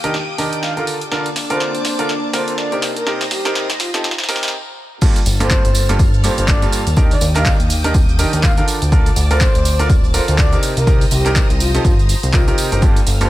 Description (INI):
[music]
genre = piano house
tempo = 123 BPM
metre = 4/4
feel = swing 58% on 16ths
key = unclear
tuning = A4 = 440 Hz
[part]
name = string machine, violins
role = sustained chords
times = 0.0-13.3 s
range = D4 to F6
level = -28 LUFS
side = equal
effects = ensemble chorus, sidechain pumping
[part]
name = clear concert grand piano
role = riff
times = 0.0-13.3 s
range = G2 to Bb4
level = -21 LUFS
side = right 1 dB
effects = sidechain pumping, ping-pong delay
[part]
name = punchy analog drum machine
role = drums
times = 0.0-13.3 s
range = crash cymbal, handclaps, hi-hat, shaker, snare drum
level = -22 LUFS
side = right 1 dB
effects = high-pass filter on snare, high-pass filter on hats, high-pass filter on cymbals, high-pass filter on perc, high-pass filter on room
[part]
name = airy breathy pad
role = texture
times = 0.0-4.5 s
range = Bb3 to Bb5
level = -29 LUFS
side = left 1 dB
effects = chorus, sidechain pumping
[part]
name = breathy flute-like synth lead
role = melody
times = 0.6-13.3 s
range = F4 to F5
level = -24 LUFS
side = left 1 dB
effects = chorus, ping-pong delay
[part]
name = electronic kick drum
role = drums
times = 5.0-12.9 s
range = none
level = -15 LUFS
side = equal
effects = none
[part]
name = tambourine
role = percussion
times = 5.0-13.3 s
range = none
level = -30 LUFS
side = right 2 dB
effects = none
[part]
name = fat analog bass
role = bass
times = 5.3-13.3 s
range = D1 to G2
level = -17 LUFS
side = equal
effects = sidechain pumping
[sound]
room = digital ambience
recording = high-pass filter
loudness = -13 LUFS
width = side -15 dB against mid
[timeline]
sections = 0.0-5.0 A section; 5.0-13.3 B section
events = build-up 0.0-5.0; drum fill 0.0-4.5; filter sweep on soft synth lead 0.0-5.0; filter sweep 0.0-5.0; stop 4.5-5.0; drop 5.0-13.3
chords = 0.0 Ebmaj7; 0.9 Bbmaj7/D; 2.8 Cm7; 5.0 Gm9; 7.0 Ebmaj7; 8.7 Bbmaj7/D; 10.6 Cm7